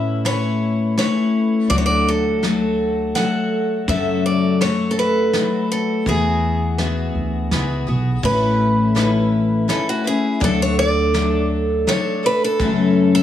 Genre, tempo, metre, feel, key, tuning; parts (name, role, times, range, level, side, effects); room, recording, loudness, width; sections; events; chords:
acoustic folk duo or small band; 83 BPM; 3/4; straight; A major; A4 = 440 Hz
picked steel-string acoustic guitar; melody; 0.0-13.2 s; F#4 to F#5; -22 LUFS; equal
picked twelve-string acoustic guitar; accompaniment; 0.0-13.2 s; F#2 to B4; -18 LUFS; left 2 dB
upright bass; bass; 0.0-13.2 s; A1 to A2; -22 LUFS; right 1 dB
soft brush drum kit; drums; 0.2-12.8 s; hi-hat, kick drum, snare drum; -25 LUFS; right 1 dB
moderate small room ambience, RT60 0.5 s; small room ambience; -16 LUFS; side -10 dB against mid
0.0-8.2 A section; 8.2-13.2 B section
steel-string acoustic guitar solo 8.2-13.2
0.0 Aadd9; 1.7 D; 3.9 F#m; 6.1 Eadd9; 8.2 Aadd9; 10.4 D; 12.6 F#m